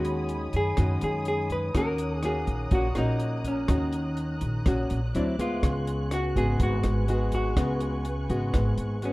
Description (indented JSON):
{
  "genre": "bossa nova",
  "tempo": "124 BPM",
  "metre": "4/4",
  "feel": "straight",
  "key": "Eb minor",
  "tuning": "A4 = 440 Hz",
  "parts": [
    { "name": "vintage hollow-body jazz guitar", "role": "melody", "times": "0.0-9.1 s", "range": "Db4 to B4", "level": "-31 LUFS", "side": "equal", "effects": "none" },
    { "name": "nylon-string guitar", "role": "accompaniment", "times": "0.0-9.1 s", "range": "Ab2 to F#4", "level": "-29 LUFS", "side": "left 1 dB", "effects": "none" },
    { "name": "dark studio string section", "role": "sustained chords", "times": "0.0-9.1 s", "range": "Cb5 to Gb6", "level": "-38 LUFS", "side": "equal", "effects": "none" },
    { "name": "upright bass", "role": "bass", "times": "0.0-9.1 s", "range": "Ab1 to F#2", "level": "-29 LUFS", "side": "equal", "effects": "none" },
    { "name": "compact cocktail drum kit", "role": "drums", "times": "0.0-9.1 s", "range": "hi-hat, kick drum, rim click", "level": "-30 LUFS", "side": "equal", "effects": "none" }
  ],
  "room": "light reverb",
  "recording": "rough home demo mix",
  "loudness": "-24 LUFS",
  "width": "side -20 dB against mid",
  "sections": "0.0-9.1 A section",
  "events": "none",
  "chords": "0.0 B69/D#; 1.8 Ebm7; 5.1 D9; 5.6 Db7sus4"
}